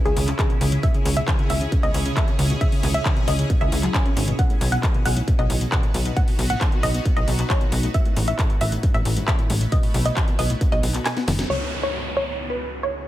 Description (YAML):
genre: uplifting trance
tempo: 135 BPM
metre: 4/4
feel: straight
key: C# minor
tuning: A4 = 440 Hz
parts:
  - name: shimmering ambient pad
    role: sustained chords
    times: 0.0-13.1 s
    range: C#3 to C#5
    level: -32 LUFS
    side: right 1 dB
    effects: chorus, built-in reverb, phaser, sidechain pumping
  - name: wide unison pluck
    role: melody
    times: 0.1-13.1 s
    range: G#4 to G#5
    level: -28 LUFS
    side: equal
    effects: sidechain pumping, dub echo
  - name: analog pluck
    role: arpeggios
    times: 0.1-11.4 s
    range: F#2 to C#4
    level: -28 LUFS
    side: left 1 dB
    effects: chorus, sidechain pumping, dub echo
  - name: tight sequencer bass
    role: bass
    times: 0.1-13.1 s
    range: F#1 to C#2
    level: -24 LUFS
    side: equal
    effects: sidechain pumping
  - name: techno drum kit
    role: drums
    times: 0.1-11.6 s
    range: crash cymbal, handclaps, hi-hat, snare drum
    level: -29 LUFS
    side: left 1 dB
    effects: sidechain pumping on hats, low-pass filter on hats, small room reverb, low-pass filter on snare, sidechain pumping on cymbals, low-pass filter on cymbals
  - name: electronic kick drum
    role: drums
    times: 0.4-10.7 s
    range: none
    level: -21 LUFS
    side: equal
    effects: distortion, small room reverb
  - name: warm concert grand piano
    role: second line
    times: 11.5-13.1 s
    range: B4 to C#5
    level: -33 LUFS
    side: equal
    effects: sidechain pumping, low-pass filter
  - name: downlifter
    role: sound effects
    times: 11.5-13.1 s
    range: none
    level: -30 LUFS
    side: right 1 dB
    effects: none
room: digital ambience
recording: none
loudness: -19 LUFS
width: side -14 dB against mid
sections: 0.0-11.5 A section; 11.5-13.1 B section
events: kick drops out 11.1-11.5; drum fill 11.1-11.5; band accent 11.4; filter sweep on synth pluck 11.5-13.1; filter sweep on ambient pad 11.5-13.1; filter sweep on grand piano 11.5-13.1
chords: 0.0 C#m; 4.4 B; 7.9 Aadd9; 9.7 B; 11.5 C#m